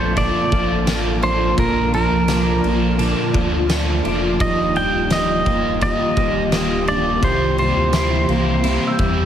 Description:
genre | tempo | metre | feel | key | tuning
dream pop | 85 BPM | 4/4 | straight | Bb major | A4 = 440 Hz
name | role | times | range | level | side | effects
pedal steel guitar | melody | 0.0-9.0 s | Bb4 to G5 | -21 LUFS | right 1 dB | ping-pong delay
crunchy overdriven guitar | accompaniment | 0.0-9.3 s | Bb2 to A4 | -25 LUFS | right 3 dB | harmonic tremolo, wide subtle chorus
ethereal airy pad | sustained chords | 0.0-9.3 s | Eb3 to D5 | -23 LUFS | equal | ensemble chorus, built-in reverb, phaser
clean electric guitar | arpeggios | 0.0-9.3 s | Bb2 to E4 | -24 LUFS | left 2 dB | ensemble chorus, ping-pong delay
sub bass with octave | bass | 0.0-9.3 s | D1 to E2 | -24 LUFS | equal | none
oversized low-tuned drum kit | drums | 0.2-9.2 s | kick drum, ride cymbal, snare drum, tambourine | -24 LUFS | equal | none
glockenspiel with rubber mallets | texture | 8.9-9.3 s | E6 to G6 | -26 LUFS | right 2 dB | ping-pong delay
room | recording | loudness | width
moderate echo chamber reverb, RT60 1.6 s | heavily compressed radio sound, multiband compression | -16 LUFS | side -9 dB against mid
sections
0.0-9.3 A section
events
none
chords
0.0 Bbmaj7; 4.4 Ebmaj7; 7.2 C7

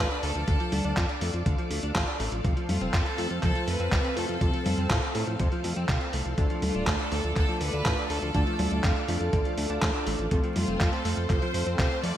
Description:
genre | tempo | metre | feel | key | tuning
italo disco | 122 BPM | 4/4 | straight | D minor | A4 = 438 Hz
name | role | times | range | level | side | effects
clear studio violin section | melody | 0.0-12.2 s | F4 to D5 | -34 LUFS | equal | ping-pong delay
string machine, full ensemble | sustained chords | 0.0-12.2 s | C4 to D6 | -36 LUFS | equal | ensemble chorus
direct-recorded clean electric guitar | arpeggios | 0.0-12.1 s | C3 to F4 | -35 LUFS | left 1 dB | ensemble chorus, ping-pong delay
fat analog bass | bass | 0.0-12.1 s | D1 to A2 | -30 LUFS | equal | none
dusty soul sampler-style drum kit | drums | 0.1-12.1 s | congas, handclaps, hi-hat | -32 LUFS | equal | gated reverb
electronic kick drum | drums | 0.5-11.9 s | none | -28 LUFS | equal | none
chorused polysynth | stabs | 6.4-12.2 s | A3 to A4 | -33 LUFS | right 2 dB | none
room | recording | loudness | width
moderate lush hall reverb, RT60 1.9 s | bright 1980s-style digital production, vinyl crackle | -24 LUFS | side -11 dB against mid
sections
0.0-12.2 A section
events
none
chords
0.0 Dm; 2.4 F; 6.4 Dm; 10.3 F

